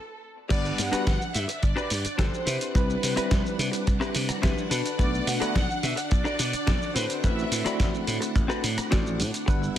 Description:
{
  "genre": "nu-disco, nu disco",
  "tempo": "107 BPM",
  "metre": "4/4",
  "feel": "straight",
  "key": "A dorian",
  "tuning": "A4 = 441 Hz",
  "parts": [
    { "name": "warm studio violin section", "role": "melody", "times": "0.0-7.8 s", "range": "A4 to F#5", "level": "-33 LUFS", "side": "equal", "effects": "tape echo" },
    { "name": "barky tine electric piano", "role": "accompaniment", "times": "0.5-9.8 s", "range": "G3 to B5", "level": "-31 LUFS", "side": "equal", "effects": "fast stereo tremolo, sidechain pumping, tape echo" },
    { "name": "string machine, full ensemble", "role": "sustained chords", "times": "0.5-9.8 s", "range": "D4 to F#5", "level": "-35 LUFS", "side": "equal", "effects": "ensemble chorus, sidechain pumping" },
    { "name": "direct-recorded clean electric guitar", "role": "riff", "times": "0.5-9.7 s", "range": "C4 to D5", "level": "-33 LUFS", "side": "left 4 dB", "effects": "lush chorus, tape echo" },
    { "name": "slap bass", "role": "bass", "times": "0.5-9.8 s", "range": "G1 to C3", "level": "-29 LUFS", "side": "equal", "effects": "sidechain pumping" },
    { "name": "dusty soul sampler-style drum kit", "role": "drums", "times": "0.5-9.7 s", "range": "crash cymbal, hi-hat, rim click, shaker, snare drum", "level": "-31 LUFS", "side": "right 1 dB", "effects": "none" },
    { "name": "kick drum", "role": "drums", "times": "0.5-9.6 s", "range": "none", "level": "-25 LUFS", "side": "equal", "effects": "none" }
  ],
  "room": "small room ambience",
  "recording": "none",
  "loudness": "-23 LUFS",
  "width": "side -11 dB against mid",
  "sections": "0.5-9.8 A section",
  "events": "break 0.0-0.5; drop 0.5-9.8",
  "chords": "0.0 N.C.; 0.5 Gmaj7; 2.5 Cmaj7; 4.7 Bm7; 7.0 Am69",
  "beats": "| 0.51 1.07 1.63 2.19 | 2.75 3.31 3.87 4.43 | 4.99 5.55 6.11 6.67 | 7.24 7.80 8.36 8.92 | 9.48"
}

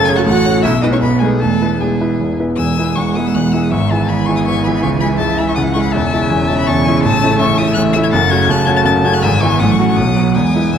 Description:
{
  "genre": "quick classical-period movement for piano quartet",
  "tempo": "161 BPM",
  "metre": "3/4",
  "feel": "rubato",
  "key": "E major",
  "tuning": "A4 = 437 Hz",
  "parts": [
    { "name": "rich violin", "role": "melody", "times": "0.0-10.8 s", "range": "G#5 to A6", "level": "-20 LUFS", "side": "left 7 dB", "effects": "none" },
    { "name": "rich violin", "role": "second line", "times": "0.0-10.8 s", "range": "G#4 to C#6", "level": "-22 LUFS", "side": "left 4 dB", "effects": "none" },
    { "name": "warm cello", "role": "second line", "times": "0.0-10.8 s", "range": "C#3 to G#4", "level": "-19 LUFS", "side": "right 6 dB", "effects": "none" },
    { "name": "clear grand piano", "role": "accompaniment", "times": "0.0-10.8 s", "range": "E1 to C#5", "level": "-14 LUFS", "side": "equal", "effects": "none" }
  ],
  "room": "wet scoring stage reverb, RT60 1.8 s",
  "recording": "dark, warm production",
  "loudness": "-12 LUFS",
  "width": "side -8 dB against mid",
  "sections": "0.0-2.6 A section; 2.6-10.8 B section",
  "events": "none",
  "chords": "0.2 F#m/A; 0.6 E/B; 1.0 B7; 1.4 E; 3.7 E/G#; 4.8 C#m; 5.9 C#m/E; 7.0 A; 8.1 F#m; 9.2 E/G#; 9.6 F#m/A; 10.0 B",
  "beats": "| 0.24 0.62 1.01 | 1.40 1.80 2.19 | 2.58 2.96 3.33 | 3.70 4.08 4.45 | 4.82 5.19 5.56 | 5.93 6.30 6.67 | 7.03 7.40 7.76 | 8.13 8.49 8.86 | 9.23 9.61 9.98 | 10.36 10.74"
}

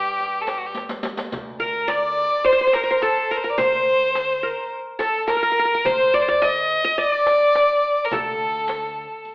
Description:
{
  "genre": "Arabic maqam ensemble",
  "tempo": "106 BPM",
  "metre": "4/4",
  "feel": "straight",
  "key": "D maqam hijaz",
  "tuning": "A4 = 439 Hz",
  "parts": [
    { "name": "clear violin", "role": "melody", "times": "0.0-9.2 s", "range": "F#4 to Eb5+22c", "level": "-20 LUFS", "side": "equal", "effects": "none" },
    { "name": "qanun", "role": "second line", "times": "0.0-9.3 s", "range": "G4 to Eb5+25c", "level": "-21 LUFS", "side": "equal", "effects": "none" },
    { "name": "clear double bass", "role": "drone", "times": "0.0-1.4 s", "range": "G2", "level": "-40 LUFS", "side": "equal", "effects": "none" },
    { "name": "darbuka", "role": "percussion", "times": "0.2-8.8 s", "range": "none", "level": "-34 LUFS", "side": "equal", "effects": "none" },
    { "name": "riq", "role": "percussion", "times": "0.2-9.3 s", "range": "none", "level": "-34 LUFS", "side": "left 1 dB", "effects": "none" },
    { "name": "upright bass", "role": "bass", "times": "1.3-9.0 s", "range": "D2", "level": "-39 LUFS", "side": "equal", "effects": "none" }
  ],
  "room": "moderate recital hall reverb, RT60 1.4 s",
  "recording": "recorded in a church or concert hall, telephone sound",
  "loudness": "-18 LUFS",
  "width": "side -24 dB against mid",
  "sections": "0.0-1.3 A section; 1.3-9.3 B section",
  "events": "drum fill 0.8-1.3",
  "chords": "none",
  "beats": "0.19 0.76 | 1.32 1.89 2.45 3.02 | 3.59 4.15 4.72 5.29 | 5.85 6.42 6.98 7.55 | 8.12 8.68 9.25"
}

